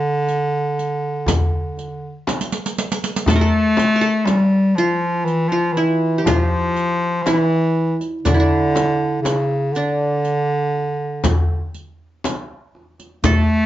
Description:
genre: Arabic maqam ensemble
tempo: 120 BPM (eighths)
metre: 10/8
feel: straight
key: D maqam nahawand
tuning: A4 = 436 Hz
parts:
  - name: warm bass clarinet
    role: melody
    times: 0.0-13.7 s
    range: C#3 to A3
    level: -18 LUFS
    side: equal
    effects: slapback echo
  - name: qanun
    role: second line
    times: 0.0-13.7 s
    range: D4 to Bb4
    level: -22 LUFS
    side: right 1 dB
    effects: none
  - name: darbuka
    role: percussion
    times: 0.3-13.5 s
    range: none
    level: -21 LUFS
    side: equal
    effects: none
  - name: riq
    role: percussion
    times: 0.3-13.5 s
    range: none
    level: -26 LUFS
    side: right 4 dB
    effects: none
  - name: frame drum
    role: percussion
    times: 1.3-13.5 s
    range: none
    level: -22 LUFS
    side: left 3 dB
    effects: none
room: wet studio reverb, RT60 0.5 s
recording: heard from further back in the room, nothing above 7.5 kHz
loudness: -16 LUFS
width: side -13 dB against mid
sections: 0.0-3.3 A section; 3.3-13.7 B section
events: drum fill 2.3-3.3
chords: none

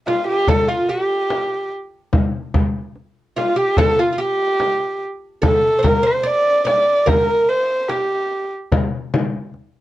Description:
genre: Persian modal ensemble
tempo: 73 BPM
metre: 4/4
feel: straight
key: unclear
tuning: A4 = 440 Hz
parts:
  - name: dark kamancheh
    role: melody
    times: 0.1-8.5 s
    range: F4 to D5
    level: -17 LUFS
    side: equal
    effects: none
  - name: oud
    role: second line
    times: 0.1-8.5 s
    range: F4 to D5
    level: -24 LUFS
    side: right 3 dB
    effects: none
  - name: frame drum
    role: percussion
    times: 0.1-9.3 s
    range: none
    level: -22 LUFS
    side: left 3 dB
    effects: none
  - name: tombak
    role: percussion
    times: 0.1-9.6 s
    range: none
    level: -20 LUFS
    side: right 1 dB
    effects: none
room: light reverb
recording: worn, warbling old tape, cassette tape, warbly pitch drift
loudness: -16 LUFS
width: side -15 dB against mid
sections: 0.0-9.8 A section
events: none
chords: none

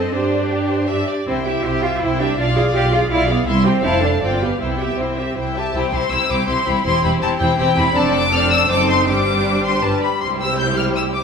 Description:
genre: quick classical-period movement for string orchestra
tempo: 161 BPM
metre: 3/4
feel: rubato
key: C major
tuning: A4 = 440 Hz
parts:
  - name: rich studio violin section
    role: melody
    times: 0.0-11.2 s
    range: D5 to G6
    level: -21 LUFS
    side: left 3 dB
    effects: none
  - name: rich studio violin section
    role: second line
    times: 0.0-11.2 s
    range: G4 to A5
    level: -24 LUFS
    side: left 4 dB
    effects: none
  - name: rich studio viola section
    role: accompaniment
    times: 0.0-11.2 s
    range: G3 to C5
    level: -22 LUFS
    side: equal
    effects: none
  - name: rich studio double bass section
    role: bass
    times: 0.0-11.2 s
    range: E1 to G2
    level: -23 LUFS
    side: right 2 dB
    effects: none
  - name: warm studio cello section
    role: bass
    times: 0.0-11.2 s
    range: C2 to G4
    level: -22 LUFS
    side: right 3 dB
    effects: none
room: moderate scoring stage reverb, RT60 1.8 s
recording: minimal, uncompressed stereo recording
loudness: -15 LUFS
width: side -6 dB against mid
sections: 0.0-5.7 A section; 5.7-11.2 A section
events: none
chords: 0.1 Gsus4; 1.3 C; 2.4 Bdim7; 3.5 C; 3.8 F; 4.2 G7; 4.6 C; 6.9 C/E; 7.9 Dm7/F; 8.7 F#dim7; 9.1 Gsus4; 10.2 C

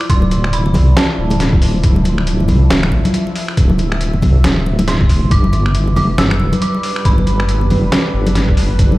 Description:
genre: deep dubstep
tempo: 138 BPM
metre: 4/4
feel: swing 59% on 16ths, half-time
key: D dorian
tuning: A4 = 440 Hz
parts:
  - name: dark detuned synth bell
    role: melody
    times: 0.0-1.6, 4.9-7.9 s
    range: A5 to E6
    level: -25 LUFS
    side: right 1 dB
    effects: chorus, tremolo, dub echo
  - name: deep dark ambient pad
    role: sustained chords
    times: 0.0-9.0 s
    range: F3 to E5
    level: -23 LUFS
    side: equal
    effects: chorus, built-in reverb
  - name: trip hop sampler-style drum kit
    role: drums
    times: 0.0-8.9 s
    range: finger snaps, hi-hat, snare drum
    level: -20 LUFS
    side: equal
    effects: none
  - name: deep soft wobble bass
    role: bass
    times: 0.1-9.0 s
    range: D1 to C2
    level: -14 LUFS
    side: equal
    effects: chorus, tube saturation
  - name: electronic kick drum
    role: drums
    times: 0.1-8.9 s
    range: none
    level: -13 LUFS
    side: equal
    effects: none
  - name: congas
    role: percussion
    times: 0.2-9.0 s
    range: none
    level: -19 LUFS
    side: equal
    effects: none
room: digital ambience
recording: played on a big sound system in a bare room, large studio reverb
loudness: -11 LUFS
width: side -18 dB against mid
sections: 0.0-9.0 A section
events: none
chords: 0.0 Dmadd9; 5.3 G

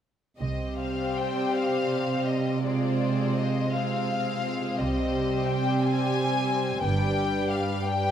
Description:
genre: classical, slow romantic movement for string orchestra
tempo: 52-59 BPM (dotted quarters)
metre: 6/8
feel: rubato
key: C minor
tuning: A4 = 440 Hz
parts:
  - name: dark studio violin section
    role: melody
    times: 0.4-8.1 s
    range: D5 to Ab5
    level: -31 LUFS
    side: left 3 dB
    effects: none
  - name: dark studio violin section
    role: second line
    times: 0.4-8.1 s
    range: F4 to C5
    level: -33 LUFS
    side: left 4 dB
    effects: none
  - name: rich studio viola section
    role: accompaniment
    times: 0.4-8.1 s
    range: G3 to D4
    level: -30 LUFS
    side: equal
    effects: none
  - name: dark chamber cello section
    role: bass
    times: 0.4-8.1 s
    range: G2 to C3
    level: -29 LUFS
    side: right 3 dB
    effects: none
  - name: rich studio double bass section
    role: bass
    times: 0.4-1.1, 4.8-7.5 s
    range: G1 to C2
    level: -31 LUFS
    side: right 2 dB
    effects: none
room: wet scoring stage reverb, RT60 1.9 s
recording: none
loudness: -24 LUFS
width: side -9 dB against mid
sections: 0.4-8.1 A section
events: none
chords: 0.4 C5; 2.6 Fm/C; 4.8 Cm; 6.8 G

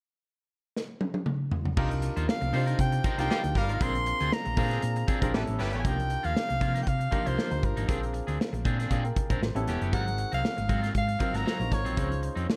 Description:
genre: polished 1980s jazz-funk pop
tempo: 118 BPM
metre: 4/4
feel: swing 54% on 16ths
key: C minor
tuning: A4 = 440 Hz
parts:
  - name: modern studio drum kit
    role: drums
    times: 0.8-12.6 s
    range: crash cymbal, hi-hat, kick drum, snare drum, toms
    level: -32 LUFS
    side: equal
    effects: gated reverb
  - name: warm concert grand piano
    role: accompaniment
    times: 1.8-12.6 s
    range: B3 to G5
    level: -38 LUFS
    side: equal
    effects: subtle chorus
  - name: electric guitar at the edge of break-up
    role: riff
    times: 1.8-12.5 s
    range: F3 to C5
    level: -39 LUFS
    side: equal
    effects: subtle chorus
  - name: hollow-body short-scale fingered electric bass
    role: bass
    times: 1.8-12.5 s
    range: E1 to C3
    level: -32 LUFS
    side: equal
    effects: none
  - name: clear soprano saxophone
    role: melody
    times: 2.3-12.2 s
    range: Bb4 to C6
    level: -35 LUFS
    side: equal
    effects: digital delay
  - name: warm horn section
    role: second line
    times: 3.3-5.8 s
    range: G3 to B4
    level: -39 LUFS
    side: equal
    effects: none
room: small room ambience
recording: none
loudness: -28 LUFS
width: mono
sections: 0.0-1.8 A section; 1.8-5.8 B section; 5.8-12.6 C section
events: drum fill 0.8-1.8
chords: 0.0 N.C.; 1.8 Cm11; 3.8 Bb9; 5.3 A9; 5.8 Cm11; 7.9 Bb9; 9.4 A9; 9.9 Ab13; 12.0 Dbmaj9

